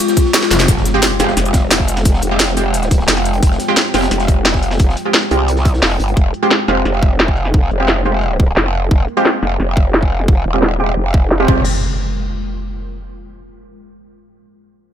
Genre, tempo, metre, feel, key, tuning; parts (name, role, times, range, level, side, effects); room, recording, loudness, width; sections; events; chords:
dark technical drum and bass; 175 BPM; 4/4; straight; F minor; A4 = 440 Hz
deep dark ambient pad; sustained chords; 0.0-11.6 s; Ab3 to G5; -24 LUFS; left 2 dB; chorus, built-in reverb, sidechain pumping
dark detuned synth bell; arpeggios; 0.0-0.6 s; F4; -23 LUFS; left 5 dB; chorus, sidechain pumping, dub echo
drum and bass drum kit; drums; 0.0-11.6 s; crash cymbal, hi-hat, ride cymbal, snare drum; -16 LUFS; equal; low-pass filter on hats, studio reverb, low-pass filter on cymbals, low-pass filter on snare
crunchy breakbeat drum kit; drums; 0.1-6.2 s; hi-hat, snare drum; -26 LUFS; equal; high-pass filter on hats, studio reverb, high-pass filter on snare, high-pass filter on room
electronic kick drum; drums; 0.2-11.6 s; -13 LUFS; equal; studio reverb
growling FM bass; bass; 0.5-0.7 s; F1; -14 LUFS; equal
growl bass; bass; 0.7-11.6 s; Eb1 to C2; -17 LUFS; equal; chorus, sidechain pumping
impact; sound effects; 0.7-2.1, 11.5-12.9 s; -21 LUFS; equal
orchestra-hit-like synth stab; stabs; 0.9-11.6 s; Ab3 to G4; -19 LUFS; right 2 dB; built-in reverb, dub echo
light reverb; -12 LUFS; side -9 dB against mid
0.7-11.7 A section; 11.7-13.0 B section
drum fill 0.4; band accent 0.6; impact 0.7-2.1; filter sweep on drum 0.7-11.7; filter sweep on ambient pad 0.7-11.7; filter sweep on synth stab 0.7-11.7
0.0 Fm; 0.7 Fmadd9; 11.7 N.C.